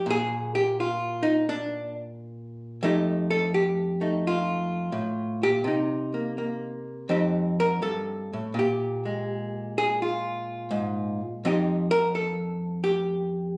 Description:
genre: solo jazz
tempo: 85 BPM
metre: 4/4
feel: swing 68% on 8ths, rubato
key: F mixolydian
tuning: A4 = 441 Hz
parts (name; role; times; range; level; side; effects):
- archtop guitar, miked and amplified; solo; 0.0-13.6 s; F2 to Bb4; -27 LUFS; equal; none
room: light reverb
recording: recorded on a phone in the room, studio reverb, compression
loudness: -27 LUFS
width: mono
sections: 0.0-13.6 A section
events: hollow-body jazz guitar solo 0.0-13.6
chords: 0.1 N.C.; 2.8 F9; 5.6 Cm7; 7.1 F9; 8.6 Bb5; 11.4 F9

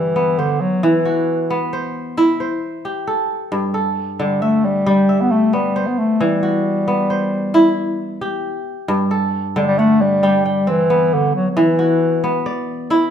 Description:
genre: west african traditional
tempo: 90 BPM (dotted quarters)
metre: 12/8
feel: straight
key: G major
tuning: A4 = 440 Hz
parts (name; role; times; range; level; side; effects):
- mellow bass clarinet; melody; 0.0-12.5 s; D3 to B3; -16 LUFS; left 1 dB; none
- kora; arpeggios; 0.0-13.1 s; G2 to G5; -18 LUFS; equal; none
room: moderate recital hall reverb, RT60 1.3 s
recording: minimal, uncompressed stereo recording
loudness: -15 LUFS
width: side -8 dB against mid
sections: 0.0-8.9 A section; 8.9-13.1 A section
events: none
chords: 0.0 G; 0.8 Em; 3.5 G; 6.2 Em; 8.9 G; 11.6 E5

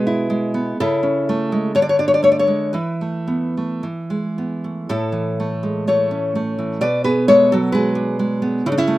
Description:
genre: romantic piece for solo classical guitar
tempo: 55-66 BPM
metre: 2/4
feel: rubato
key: A major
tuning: A4 = 444 Hz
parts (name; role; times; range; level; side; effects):
- nylon-string guitar; solo; 0.0-9.0 s; A2 to D5; -16 LUFS; equal; none
room: little or no reverb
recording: recorded outdoors, with no room sound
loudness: -16 LUFS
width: side -16 dB against mid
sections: 0.0-9.0 A section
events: none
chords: 0.0 E/B; 0.8 A/C#; 1.7 D5; 2.8 Esus4; 3.8 E; 4.9 A; 6.8 Bm13

